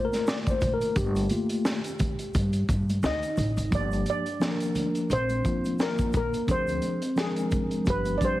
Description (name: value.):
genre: hip hop, jazz-hop.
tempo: 87 BPM.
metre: 4/4.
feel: swing 58% on 16ths.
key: G minor.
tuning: A4 = 439 Hz.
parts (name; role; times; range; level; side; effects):
mellow tine electric piano; accompaniment; 0.0-8.4 s; F3 to D5; -29 LUFS; left 1 dB; fast stereo tremolo.
crunchy breakbeat drum kit; drums; 0.1-8.4 s; hi-hat, kick drum, snare drum; -30 LUFS; equal; none.
congas and tube shaker; percussion; 0.1-8.4 s; none; -39 LUFS; right 2 dB; none.
upright bass; bass; 0.6-8.2 s; G1 to G2; -28 LUFS; equal; none.
vibraphone with soft mallets; second line; 3.0-8.4 s; Ab3 to Eb4; -34 LUFS; right 2 dB; none.
steel pan; melody; 3.1-8.4 s; Ab4 to Eb5; -30 LUFS; equal; none.
room: light reverb, studio reverb.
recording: heavily compressed radio sound, multiband compression, vinyl crackle.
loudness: -24 LUFS.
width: side -16 dB against mid.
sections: 0.0-3.7 A section; 3.7-8.4 B section.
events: tine electric piano solo 0.0-3.7.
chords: 0.0 Gm7; 6.5 Dm7b5; 7.9 G7.